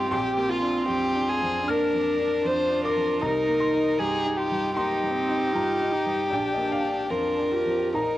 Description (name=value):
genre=neoclassical piano and strings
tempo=77 BPM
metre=4/4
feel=rubato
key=C minor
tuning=A4 = 440 Hz
part: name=rich violin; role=melody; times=0.0-8.2 s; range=F4 to C5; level=-25 LUFS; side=left 2 dB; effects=cassette tape
part: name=warm cello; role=second line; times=0.0-8.2 s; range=D4 to G4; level=-31 LUFS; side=right 4 dB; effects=cassette tape
part: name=clear baby grand piano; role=accompaniment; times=0.0-8.2 s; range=Bb1 to F6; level=-32 LUFS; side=right 1 dB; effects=cassette tape
part: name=warm viola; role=accompaniment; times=0.0-8.2 s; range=C4 to F4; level=-29 LUFS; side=right 2 dB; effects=cassette tape
room=light reverb, small room ambience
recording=home recording on cassette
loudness=-22 LUFS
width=side -14 dB against mid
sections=0.0-8.2 A section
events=none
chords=0.1 Bbadd9; 3.2 Cm7; 6.3 Gm7/Bb